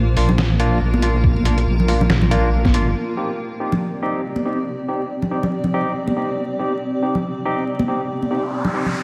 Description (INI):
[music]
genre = deep dubstep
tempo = 140 BPM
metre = 4/4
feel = swing 57% on 16ths, half-time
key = C minor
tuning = A4 = 436 Hz
[part]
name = granular cloud pad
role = sustained chords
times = 0.0-9.0 s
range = Bb3 to D5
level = -28 LUFS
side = equal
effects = built-in reverb
[part]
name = deep soft wobble bass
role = bass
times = 0.0-2.9 s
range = Bb1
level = -20 LUFS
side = equal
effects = chorus
[part]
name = barky tine electric piano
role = stabs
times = 0.2-8.9 s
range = Bb3 to G4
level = -26 LUFS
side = equal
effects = low-pass filter, dub echo
[part]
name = trip hop sampler-style drum kit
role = drums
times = 0.2-2.8 s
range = hi-hat, snare drum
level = -27 LUFS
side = equal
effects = low-pass filter on hats, low-pass filter on snare
[part]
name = congas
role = percussion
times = 0.3-8.9 s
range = none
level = -27 LUFS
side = equal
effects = dub echo
[part]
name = electronic kick drum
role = drums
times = 1.2-2.7 s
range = none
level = -20 LUFS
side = equal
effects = none
[part]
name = noise sweep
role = sound effects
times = 8.3-9.0 s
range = none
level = -29 LUFS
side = equal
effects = none
[sound]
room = wet church reverb, RT60 3.1 s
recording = dreamy mix soaked in reverb, vinyl crackle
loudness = -20 LUFS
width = mono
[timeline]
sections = 0.0-3.0 A section; 3.0-9.0 B section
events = drop 0.0-3.0; filter sweep on ambient pad 3.0-9.0; noise sweep 8.3-9.0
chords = 0.0 Bb; 3.0 Cm